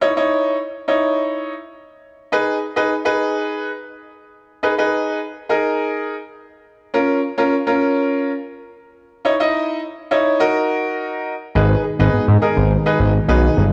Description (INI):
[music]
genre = pop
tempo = 104 BPM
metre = 4/4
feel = straight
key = G# minor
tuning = A4 = 439 Hz
[part]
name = clear concert grand piano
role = accompaniment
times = 0.0-13.6 s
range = C#4 to D#5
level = -20 LUFS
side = equal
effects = none
[part]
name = chorused pulse-width pad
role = sustained chords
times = 11.6-13.7 s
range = B2 to D#4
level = -26 LUFS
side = equal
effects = none
[part]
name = soft round pluck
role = arpeggios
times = 11.6-13.7 s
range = B3 to D#5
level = -28 LUFS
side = equal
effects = chorus, tape echo
[part]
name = fat analog bass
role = bass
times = 11.6-13.7 s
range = G1 to G#2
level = -16 LUFS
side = equal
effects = none
[sound]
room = light reverb, digital ambience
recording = dry, gritty hardware recording, small room ambience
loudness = -19 LUFS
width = mono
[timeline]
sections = 0.0-11.6 A section; 11.6-13.7 B section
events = none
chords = 0.0 C#madd9; 2.3 G#m; 6.9 A#m; 9.2 C#madd9; 10.4 D#m; 11.6 G#m